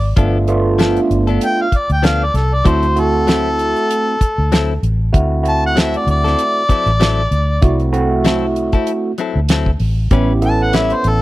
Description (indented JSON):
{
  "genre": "straight-eighth soul blues",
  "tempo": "96 BPM",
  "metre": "4/4",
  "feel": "swing 56% on 16ths",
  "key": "D mixolydian",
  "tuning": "A4 = 437 Hz",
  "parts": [
    { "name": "warm harmonica", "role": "melody", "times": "0.0-11.2 s", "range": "A4 to A5", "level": "-18 LUFS", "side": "left 1 dB", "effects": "overdrive" },
    { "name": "vintage muted fingered electric bass", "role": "bass", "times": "0.0-11.2 s", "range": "G1 to D2", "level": "-17 LUFS", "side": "equal", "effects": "none" },
    { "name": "overdriven tine electric piano", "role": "accompaniment", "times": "0.2-11.2 s", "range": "A3 to A4", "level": "-18 LUFS", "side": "right 3 dB", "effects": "phaser" },
    { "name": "direct-recorded clean electric guitar", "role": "stabs", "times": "0.2-10.9 s", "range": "F3 to B4", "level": "-22 LUFS", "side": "left 6 dB", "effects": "none" },
    { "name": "damped 70s drum kit", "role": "drums", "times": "0.2-11.2 s", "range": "hi-hat, kick drum, snare drum", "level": "-15 LUFS", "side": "equal", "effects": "none" }
  ],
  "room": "studio reverb",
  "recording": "dry, close 1970s-style studio recording",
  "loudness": "-13 LUFS",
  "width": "side -17 dB against mid",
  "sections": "0.0-11.2 A section",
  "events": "none",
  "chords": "0.2 G9; 2.7 D9; 10.1 A9"
}